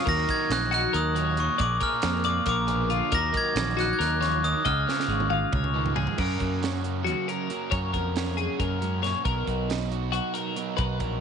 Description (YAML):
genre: math rock and midwest emo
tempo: 275 BPM (eighths)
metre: 7/8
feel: straight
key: F# major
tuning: A4 = 441 Hz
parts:
  - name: twelve-string electric guitar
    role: accompaniment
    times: 0.0-11.2 s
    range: F#2 to A#4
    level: -33 LUFS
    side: right 14 dB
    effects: none
  - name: twelve-string electric guitar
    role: arpeggios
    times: 0.0-11.2 s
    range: E#4 to E#5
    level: -30 LUFS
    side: left 12 dB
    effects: none
  - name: overdriven semi-hollow guitar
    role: riff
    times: 0.0-11.2 s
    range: F#2 to G#4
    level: -36 LUFS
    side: right 13 dB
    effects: none
  - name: glockenspiel with hard plastic mallets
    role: melody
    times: 0.1-5.7 s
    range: C#6 to A#6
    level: -28 LUFS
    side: left 1 dB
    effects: slapback echo
  - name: growling fingered electric bass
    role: bass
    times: 0.1-11.2 s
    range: G#1 to F#2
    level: -29 LUFS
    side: equal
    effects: overdrive
  - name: crisp fusion drum kit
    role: drums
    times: 0.1-11.1 s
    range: crash cymbal, hi-hat, kick drum, snare drum, toms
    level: -32 LUFS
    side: right 2 dB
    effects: none
room: light reverb, small room ambience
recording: 1960s-style stereo with parts hard left and right, nothing above 10.7 kHz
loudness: -23 LUFS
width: side -7 dB against mid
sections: 0.0-6.2 A section; 6.2-11.2 B section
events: drum fill 4.9-6.2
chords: 0.1 D#m7; 1.6 A#7; 3.1 D#m7; 4.6 C#7; 6.2 F#maj7; 9.2 Bmaj7